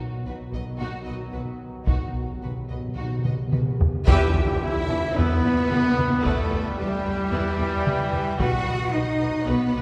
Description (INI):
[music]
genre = cinematic, epic orchestral film score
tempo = 111 BPM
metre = 4/4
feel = straight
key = E minor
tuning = A4 = 439 Hz
[part]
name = bright trombone section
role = sustained chords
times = 0.0-9.8 s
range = D#3 to G3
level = -37 LUFS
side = equal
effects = none
[part]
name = dark French horn section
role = sustained chords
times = 0.0-9.8 s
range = G3 to G4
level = -34 LUFS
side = equal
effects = none
[part]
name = timpani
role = percussion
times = 0.0-4.8, 8.4-9.2 s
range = E2 to B2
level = -34 LUFS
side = equal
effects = none
[part]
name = clear symphonic violin section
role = melody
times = 0.3-9.8 s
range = F#4 to F#5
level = -42 LUFS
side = equal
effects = none
[part]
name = warm symphonic violin section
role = second line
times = 0.3-9.8 s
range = D#4 to G5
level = -39 LUFS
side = equal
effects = none
[part]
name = warm symphonic viola section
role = accompaniment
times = 0.3-9.8 s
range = E4 to D#5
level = -37 LUFS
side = equal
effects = none
[part]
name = clear symphonic double bass section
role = bass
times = 0.3-9.8 s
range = B1 to E2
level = -31 LUFS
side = equal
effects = none
[part]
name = rich symphonic cello section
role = bass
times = 0.3-9.8 s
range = B2 to G4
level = -32 LUFS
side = equal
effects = none
[part]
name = taiko ensemble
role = drums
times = 0.5-8.9 s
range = none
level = -28 LUFS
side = equal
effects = none
[part]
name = mellow concert flute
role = second line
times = 4.1-9.8 s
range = G4 to G5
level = -37 LUFS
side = equal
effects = none
[part]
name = mellow trumpet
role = stabs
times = 4.1-9.8 s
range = G3 to G4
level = -33 LUFS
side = equal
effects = none
[part]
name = tam-tam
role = percussion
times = 4.1-6.2 s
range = none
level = -38 LUFS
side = equal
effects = none
[sound]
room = wet concert hall reverb, RT60 2.3 s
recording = recorded in a church or concert hall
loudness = -24 LUFS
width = mono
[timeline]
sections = 0.0-4.1 A section; 4.1-9.8 B section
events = timpani fill 0.0-4.1; drum fill 3.3-4.1; band accent 4.1-4.6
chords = 0.0 B; 4.1 Em; 8.4 B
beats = 0.27 0.80 1.34 | 1.89 2.44 2.99 3.54 | 4.08 4.62 5.16 5.70 | 6.24 6.78 7.32 7.86 | 8.40 8.94 9.47